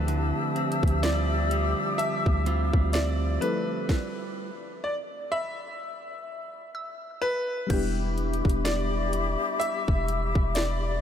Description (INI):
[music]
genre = contemporary R&B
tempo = 63 BPM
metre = 4/4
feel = swing 58% on 16ths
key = unclear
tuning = A4 = 440 Hz
[part]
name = clear grand piano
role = melody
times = 0.0-11.0 s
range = B4 to E5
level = -32 LUFS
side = equal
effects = analog delay
[part]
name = mellow FM electric piano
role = accompaniment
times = 0.0-11.0 s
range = F3 to A4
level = -34 LUFS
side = left 4 dB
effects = chorus
[part]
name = breathy mellow small flute group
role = sustained chords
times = 0.0-11.0 s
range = G4 to E6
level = -31 LUFS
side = left 4 dB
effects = sidechain pumping
[part]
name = direct-recorded clean electric guitar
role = arpeggios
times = 0.0-4.5 s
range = D3 to F4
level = -32 LUFS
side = right 9 dB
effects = analog delay
[part]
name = long sustained 808-style bass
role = bass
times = 0.0-11.0 s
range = E1 to D2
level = -27 LUFS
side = equal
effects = none
[part]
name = mallet-like synth pluck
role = texture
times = 0.0-9.3 s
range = A5 to G6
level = -46 LUFS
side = equal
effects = chorus, analog delay
[part]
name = trap drum kit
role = drums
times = 0.1-10.8 s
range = crash cymbal, hi-hat, kick drum, snare drum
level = -29 LUFS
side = equal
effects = none
[sound]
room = moderate huge ambient reverb, RT60 6.0 s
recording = dreamy mix soaked in reverb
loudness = -24 LUFS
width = side -9 dB against mid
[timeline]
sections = 0.0-7.7 A section; 7.7-11.0 A section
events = stop 3.9-7.7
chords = 0.0 Dm11; 3.9 Bsus4; 7.7 Em7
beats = | 0.08 1.03 1.99 2.94 | 3.89 4.84 5.79 6.75 | 7.70 8.65 9.60 10.56